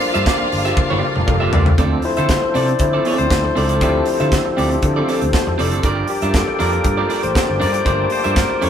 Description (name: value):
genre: disco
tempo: 118 BPM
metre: 4/4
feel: straight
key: D minor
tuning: A4 = 440 Hz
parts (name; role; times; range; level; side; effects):
- clear studio string section; second line; 0.0-1.7 s; F4 to F5; -23 LUFS; equal; none
- barky tine electric piano; accompaniment; 0.0-8.7 s; F3 to D5; -20 LUFS; left 4 dB; none
- electric guitar at the edge of break-up; accompaniment; 0.0-8.7 s; Bb3 to E5; -23 LUFS; right 4 dB; none
- overdriven tonewheel organ; sustained chords; 0.0-8.7 s; D3 to G4; -24 LUFS; equal; chorus vibrato, slow rotary speaker
- modern studio drum kit; drums; 0.0-8.7 s; hi-hat, kick drum, snare drum, toms; -20 LUFS; equal; none
- fingered electric bass; bass; 0.2-8.7 s; F1 to D3; -22 LUFS; equal; none
room: wet stone room reverb, RT60 1.1 s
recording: band playing live in one room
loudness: -14 LUFS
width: side -9 dB against mid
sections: 0.0-1.8 A section; 1.8-8.7 B section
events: drum fill 0.8-1.8; tine electric piano solo 1.8-8.7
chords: 0.0 Gm7; 1.8 Dm7; 5.8 Gm7